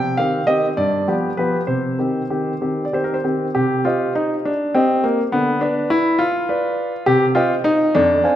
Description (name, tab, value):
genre	classical-period piano sonatina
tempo	62-70 BPM (dotted quarters)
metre	6/8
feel	rubato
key	C minor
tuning	A4 = 440 Hz
part	warm baby grand piano	solo	0.0-8.4 s	F2 to Ab5	-16 LUFS	equal	none
room	wet recital hall reverb, RT60 1.7 s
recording	none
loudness	-16 LUFS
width	side -11 dB against mid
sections	0.0-3.6 A section; 3.6-8.4 B section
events	none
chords	0.0 Cm; 0.8 G7; 1.7 Cm; 5.3 Bdim/D; 7.1 Cm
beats	0.77 | 1.68 2.60 | 3.55 4.45 | 5.33 6.20 | 7.07 7.96